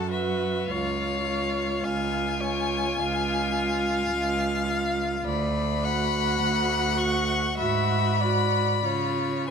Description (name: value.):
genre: classical, slow romantic movement for string quartet.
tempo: 45-54 BPM.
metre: 4/4.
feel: rubato.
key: unclear.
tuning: A4 = 440 Hz.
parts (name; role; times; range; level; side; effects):
bright violin; melody; 0.0-9.5 s; E5 to C#6; -29 LUFS; left 6 dB; none.
rich violin; second line; 0.0-9.5 s; A4 to F#5; -29 LUFS; left 4 dB; none.
clear viola; accompaniment; 0.0-9.5 s; E#4 to F#4; -30 LUFS; right 3 dB; none.
clear cello; bass; 0.0-9.5 s; C#2 to C#3; -28 LUFS; right 4 dB; none.
room: wet recital hall reverb, RT60 1.6 s.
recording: none.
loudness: -23 LUFS.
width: side -6 dB against mid.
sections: 0.0-9.5 A section.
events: none.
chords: 0.0 F#m; 0.7 C#; 5.3 D6; 7.6 G#m7b5; 8.8 C#.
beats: | 0.68 1.82 2.98 4.11 | 5.26 6.40 7.58 8.84.